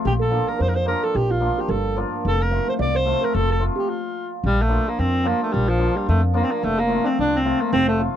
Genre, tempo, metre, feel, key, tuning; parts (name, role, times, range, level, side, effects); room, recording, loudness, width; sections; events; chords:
balkan folk, Balkan wedding band; 110 BPM; 2/4; swing 56% on 16ths; A4 = 445 Hz
cimbalom; accompaniment; 0.0-8.2 s; F3 to F4; -26 LUFS; left 1 dB
warm alto saxophone; melody; 0.1-8.0 s; F3 to D5; -22 LUFS; equal
felt-muted upright piano; second line; 0.1-3.9, 7.7-7.9 s; F4 to D5; -27 LUFS; right 6 dB
upright bass; bass; 0.1-8.1 s; F1 to F2; -22 LUFS; equal
little or no reverb; dry, close 1970s-style studio recording; -18 LUFS; side -10 dB against mid
0.0-4.4 A section; 4.4-8.2 A section
stop 3.9-4.4
0.1 Bb; 2.2 F; 4.4 Bb; 6.6 F